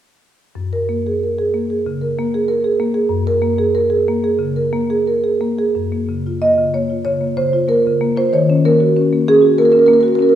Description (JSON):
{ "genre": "classical, contemporary piece for solo marimba", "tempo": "92 BPM", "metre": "4/4", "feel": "uneven beats, rubato", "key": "Gb lydian", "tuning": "A4 = 440 Hz", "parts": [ { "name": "marimba with medium mallets", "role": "solo", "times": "0.6-10.4 s", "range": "Gb2 to Eb5", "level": "-13 LUFS", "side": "equal", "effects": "none" } ], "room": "wet recital hall reverb, RT60 1.4 s", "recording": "heard from further back in the room", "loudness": "-13 LUFS", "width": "side -10 dB against mid", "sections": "0.5-5.8 A section; 5.8-10.4 B section", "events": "none", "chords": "0.5 Gbadd9; 5.8 Gbmaj7; 8.3 Ebm7" }